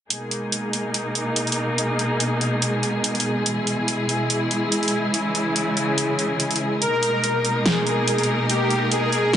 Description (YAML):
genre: heavy wobble dubstep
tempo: 143 BPM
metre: 4/4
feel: half-time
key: G# minor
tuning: A4 = 440 Hz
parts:
  - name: warm symphonic string section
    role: sustained chords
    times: 0.1-9.4 s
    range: B2 to A#4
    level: -22 LUFS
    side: equal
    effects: low-pass filter
  - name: dubstep drum kit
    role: drums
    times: 0.1-9.4 s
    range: hi-hat, snare drum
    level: -23 LUFS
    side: right 1 dB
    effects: overdrive
  - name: soft supersaw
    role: melody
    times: 6.8-9.4 s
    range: G4 to A#4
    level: -22 LUFS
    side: equal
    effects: tape echo
room: moderate plate reverb, RT60 1.7 s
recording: nothing above 10.4 kHz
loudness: -20 LUFS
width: side -9 dB against mid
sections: 0.1-9.4 A section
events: none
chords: 0.1 G#madd9; 3.5 E; 5.1 C#m; 6.8 G#madd9